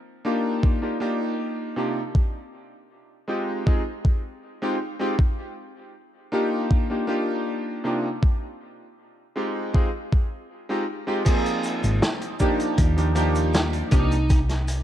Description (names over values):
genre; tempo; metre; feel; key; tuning
vaporwave; 79 BPM; 4/4; straight; C minor; A4 = 440 Hz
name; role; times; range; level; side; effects
clear electric grand piano; accompaniment; 0.2-14.1 s; C3 to Ab4; -26 LUFS; equal; lush chorus, tape echo
electronic kick drum; drums; 0.6-14.5 s; none; -20 LUFS; equal; overdrive
vintage drum kit; drums; 11.3-14.8 s; cabasa, crash cymbal, hi-hat, snare drum; -28 LUFS; equal; none
hollow-body short-scale fingered electric bass; bass; 11.8-14.8 s; Ab1 to Eb2; -22 LUFS; equal; none
bluesy overdriven lead guitar; melody; 13.9-14.4 s; Eb4; -29 LUFS; right 1 dB; distortion, tape echo
room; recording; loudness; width
light reverb, small room reverb; none; -21 LUFS; side -11 dB against mid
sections
0.0-11.3 A section; 11.3-14.8 B section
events
break 10.5-11.3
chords
0.0 F13sus4; 1.8 Cm11; 3.3 Fm9; 5.2 Bbadd11; 7.8 Cm11; 9.4 Fm9; 11.3 Ab69; 12.8 Ebmaj9; 13.9 Cm11